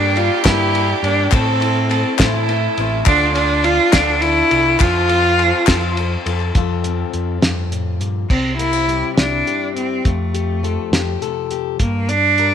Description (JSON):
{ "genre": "indie folk with a building arrangement", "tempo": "69 BPM (dotted quarters)", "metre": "6/8", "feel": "straight", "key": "F major", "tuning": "A4 = 440 Hz", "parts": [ { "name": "clear cello", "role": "melody", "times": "0.0-12.5 s", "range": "A3 to F4", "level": "-17 LUFS", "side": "right 1 dB", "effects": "none" }, { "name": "rich fiddle", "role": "second line", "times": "0.0-6.3 s", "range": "C4 to A4", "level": "-23 LUFS", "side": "right 13 dB", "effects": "none" }, { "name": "picked twelve-string acoustic guitar", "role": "accompaniment", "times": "0.0-6.6 s", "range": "G2 to A4", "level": "-24 LUFS", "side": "left 14 dB", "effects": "none" }, { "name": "picked electric bass", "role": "bass", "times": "0.0-12.5 s", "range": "A1 to A2", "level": "-21 LUFS", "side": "equal", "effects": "none" }, { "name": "cloth-damped thuddy drum kit", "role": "drums", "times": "0.2-12.5 s", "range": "crash cymbal, hi-hat, kick drum, ride cymbal, snare drum", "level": "-20 LUFS", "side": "equal", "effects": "none" }, { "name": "group handclap", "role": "percussion", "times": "0.2-6.5 s", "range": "none", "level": "-25 LUFS", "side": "left 14 dB", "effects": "none" }, { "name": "fingerpicked plugged-in steel-string acoustic guitar", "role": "accompaniment", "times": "6.5-12.5 s", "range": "F2 to Bb4", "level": "-24 LUFS", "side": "left 13 dB", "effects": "none" } ], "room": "light reverb, studio ambience", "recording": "1960s-style stereo with parts hard left and right", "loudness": "-14 LUFS", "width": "side -8 dB against mid", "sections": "0.0-6.5 A section; 6.5-8.3 B section; 8.3-12.5 C section", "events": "none", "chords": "0.0 Gm; 1.3 Am; 3.1 Dm; 4.8 F; 8.3 C; 10.0 Fadd9; 11.8 Gm" }